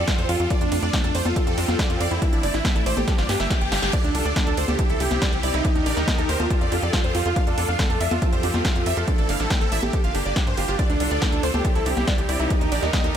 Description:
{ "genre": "uplifting trance", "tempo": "140 BPM", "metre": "4/4", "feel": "straight", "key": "D minor", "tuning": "A4 = 440 Hz", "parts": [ { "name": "supersaw chords", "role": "melody", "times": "0.0-13.2 s", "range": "D4 to G5", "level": "-27 LUFS", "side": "right 1 dB", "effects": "phaser, cassette tape, sidechain pumping, diffuse ambient delay" }, { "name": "plucky unison lead", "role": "second line", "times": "0.0-13.1 s", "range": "D4 to G5", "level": "-32 LUFS", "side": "equal", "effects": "none" }, { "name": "bright studio string section", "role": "sustained chords", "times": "0.0-13.2 s", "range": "C3 to Bb4", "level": "-30 LUFS", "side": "right 1 dB", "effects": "sidechain pumping" }, { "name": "tight sequencer bass", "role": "bass", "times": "0.0-13.1 s", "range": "G1 to G2", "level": "-26 LUFS", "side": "equal", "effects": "sidechain pumping" }, { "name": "big-room dance drum kit", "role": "drums", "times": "0.1-13.2 s", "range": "congas, crash cymbal, hi-hat, ride cymbal, snare drum", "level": "-28 LUFS", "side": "equal", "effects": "none" }, { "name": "electronic kick drum", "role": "drums", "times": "0.1-13.0 s", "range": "none", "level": "-23 LUFS", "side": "equal", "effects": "none" }, { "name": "analog pluck", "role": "arpeggios", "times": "0.3-13.1 s", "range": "D4 to D5", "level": "-31 LUFS", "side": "right 3 dB", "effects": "wide subtle chorus, sidechain pumping, diffuse ambient delay" }, { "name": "reverse cymbal", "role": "sound effects", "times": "3.3-3.9 s", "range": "none", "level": "-33 LUFS", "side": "left 4 dB", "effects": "none" } ], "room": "light reverb", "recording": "none", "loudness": "-19 LUFS", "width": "side -9 dB against mid", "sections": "0.0-13.2 A section", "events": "drum fill 3.1-3.9; reverse cymbal 3.3-3.9", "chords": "0.0 Fadd9; 0.5 Dm/F; 1.4 Fadd9; 2.2 Am; 3.1 Gm; 3.9 Dm; 4.8 C; 5.6 Eb; 6.5 Fadd9; 7.4 Dm/F; 8.2 Fadd9; 9.1 Am; 9.9 Gm; 10.8 Dm; 11.6 C; 12.5 Eb", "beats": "0.08 | 0.51 0.93 1.36 1.79 | 2.22 2.65 3.08 3.50 | 3.93 4.36 4.79 5.22 | 5.65 6.08 6.50 6.93 | 7.36 7.79 8.22 8.65 | 9.08 9.51 9.93 10.36 | 10.79 11.22 11.65 12.08 | 12.51 12.93" }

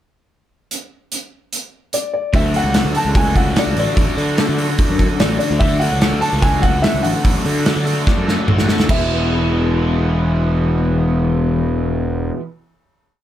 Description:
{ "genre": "indie rock", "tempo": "146 BPM", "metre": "4/4", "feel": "straight", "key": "unclear", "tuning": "A4 = 440 Hz", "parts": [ { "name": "loose indie drum kit", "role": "drums", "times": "0.7-9.0 s", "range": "crash cymbal, hi-hat, kick drum, snare drum, toms", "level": "-18 LUFS", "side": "equal", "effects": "none" }, { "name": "dark upright piano", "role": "melody", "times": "1.9-12.3 s", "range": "D5 to A5", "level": "-22 LUFS", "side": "left 1 dB", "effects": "slapback echo, plate reverb" }, { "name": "overdriven electric guitar", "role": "riff", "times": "2.3-12.4 s", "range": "D3 to G#4", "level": "-23 LUFS", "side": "left 8 dB", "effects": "phaser" }, { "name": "overdriven electric guitar", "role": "riff", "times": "2.3-12.4 s", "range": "E2 to A4", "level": "-24 LUFS", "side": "right 6 dB", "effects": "wide subtle chorus, slapback echo" }, { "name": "fuzz picked electric bass", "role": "bass", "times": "2.3-12.3 s", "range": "E1 to D3", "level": "-19 LUFS", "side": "equal", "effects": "overdrive" } ], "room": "light reverb", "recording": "none", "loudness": "-14 LUFS", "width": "side -12 dB against mid", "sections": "0.7-2.3 pickup bar; 2.3-8.9 pre-chorus; 8.9-12.2 final chord", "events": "drum fill 8.1-8.9", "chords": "0.7 N.C.; 2.3 Dmaj7; 8.9 E", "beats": "| 0.70 1.11 1.52 1.93 | 2.34 2.75 3.15 3.56 | 3.97 4.38 4.79 5.20 | 5.61 6.02 6.43 6.85 | 7.26 7.67 8.08 8.49 | 8.90 9.31 9.72 10.13 | 10.54 10.94 11.35 11.76" }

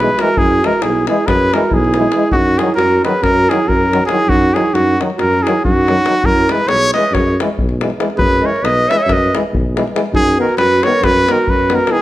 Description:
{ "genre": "balkan folk, Balkan brass band", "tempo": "277 BPM (eighths)", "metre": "9/8", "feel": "straight", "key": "unclear", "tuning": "A4 = 438 Hz", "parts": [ { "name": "warm trumpet", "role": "melody", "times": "0.0-12.0 s", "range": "F#4 to E5", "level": "-15 LUFS", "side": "equal", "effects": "none" }, { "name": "mellow clarinet", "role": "second line", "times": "0.0-12.0 s", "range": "D#4 to C#5", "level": "-19 LUFS", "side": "right 4 dB", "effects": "none" }, { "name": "brilliant trombone", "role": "accompaniment", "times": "0.0-12.0 s", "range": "D#3 to E3", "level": "-25 LUFS", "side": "right 4 dB", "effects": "none" }, { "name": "clear euphonium", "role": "accompaniment", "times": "0.0-12.0 s", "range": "F#3 to B3", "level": "-22 LUFS", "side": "left 4 dB", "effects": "none" }, { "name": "mellow tuba", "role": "bass", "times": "0.0-11.8 s", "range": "B1 to F#2", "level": "-18 LUFS", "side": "equal", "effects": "none" }, { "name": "davul", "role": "percussion", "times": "0.0-12.0 s", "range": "none", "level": "-20 LUFS", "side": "left 2 dB", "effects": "none" } ], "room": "moderate recital hall reverb, RT60 1.2 s", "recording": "none", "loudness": "-11 LUFS", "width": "side -14 dB against mid", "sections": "0.0-12.0 A section", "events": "none", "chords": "0.0 E; 2.3 F#13; 6.2 E; 10.1 B/F#", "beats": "0.16 | 0.38 0.59 0.81 1.03 1.25 1.47 1.68 1.90 2.12 | 2.33 2.55 2.77 2.98 3.20 3.42 3.63 3.85 4.07 | 4.29 4.50 4.72 4.94 5.15 5.37 5.59 5.80 6.02 | 6.24 6.45 6.67 6.88 7.10 7.32 7.53 7.75 7.97 | 8.18 8.40 8.62 8.83 9.05 9.26 9.48 9.70 9.91 | 10.13 10.34 10.56 10.78 10.99 11.21 11.42 11.64 11.85" }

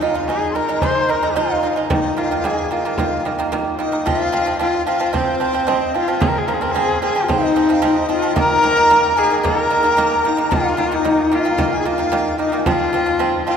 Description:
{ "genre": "mongolian traditional, Mongolian folk", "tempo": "112 BPM", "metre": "4/4", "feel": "straight", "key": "F yu mode", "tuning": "A4 = 440 Hz", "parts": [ { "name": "clear horsehead fiddle", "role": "melody", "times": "0.0-13.6 s", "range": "C4 to C5", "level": "-19 LUFS", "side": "left 2 dB", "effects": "none" }, { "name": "mellow hollow dizi", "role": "second line", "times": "0.0-13.6 s", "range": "C5 to C6", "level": "-23 LUFS", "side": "left 3 dB", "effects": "none" }, { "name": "pipa", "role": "arpeggios", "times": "0.0-13.6 s", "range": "Eb3 to Eb4", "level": "-20 LUFS", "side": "right 5 dB", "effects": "none" }, { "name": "frame drum", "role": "percussion", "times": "0.0-13.3 s", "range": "none", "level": "-25 LUFS", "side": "right 1 dB", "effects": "none" } ], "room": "wet cathedral reverb, RT60 5.2 s", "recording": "recorded in a church or concert hall", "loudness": "-15 LUFS", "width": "side -7 dB against mid", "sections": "0.0-4.1 A section; 4.1-13.6 B section", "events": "none", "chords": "0.0 Ab5; 1.9 Eb5; 4.1 F5; 8.4 Eb5; 12.7 F5", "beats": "0.29 0.83 1.37 | 1.91 2.45 2.99 3.53 | 4.06 4.60 5.14 5.68 | 6.22 6.75 7.29 7.83 | 8.37 8.90 9.44 9.98 | 10.51 11.05 11.59 12.13 | 12.66 13.20" }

